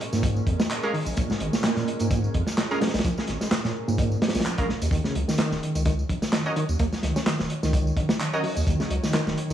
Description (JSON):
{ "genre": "breakbeat, breaks", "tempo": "128 BPM", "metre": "4/4", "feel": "swing 55% on 16ths", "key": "Eb minor pentatonic", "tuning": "A4 = 438 Hz", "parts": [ { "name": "deep dark ambient pad", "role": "sustained chords", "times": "0.0-9.5 s", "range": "Gb3 to Db5", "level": "-34 LUFS", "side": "equal", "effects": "chorus, built-in reverb, sidechain pumping" }, { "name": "barky reed electric piano", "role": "riff", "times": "0.0-9.5 s", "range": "Ab2 to Db4", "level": "-29 LUFS", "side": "right 1 dB", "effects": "fast tremolo, overdrive, analog delay" }, { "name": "crunchy breakbeat drum kit", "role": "drums", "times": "0.0-9.5 s", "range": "hi-hat, kick drum, snare drum", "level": "-26 LUFS", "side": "equal", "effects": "none" }, { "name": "saturated sub bass", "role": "bass", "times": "0.1-9.5 s", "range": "Eb1 to Bb2", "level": "-27 LUFS", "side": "equal", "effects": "tube saturation" }, { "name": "electronic tambourine and handclaps", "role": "drums", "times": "0.1-9.5 s", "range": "none", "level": "-35 LUFS", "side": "equal", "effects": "none" }, { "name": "orchestra-hit-like synth stab", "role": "stabs", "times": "0.8-8.4 s", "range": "Ab3 to Eb5", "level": "-31 LUFS", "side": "right 2 dB", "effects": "built-in reverb, cassette tape, analog delay" } ], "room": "small room ambience", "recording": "dry, gritty hardware recording, vinyl crackle, studio ambience", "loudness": "-22 LUFS", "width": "side -10 dB against mid", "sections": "0.0-9.5 A section", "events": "none", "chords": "0.0 Bbm7; 4.9 Ebm7" }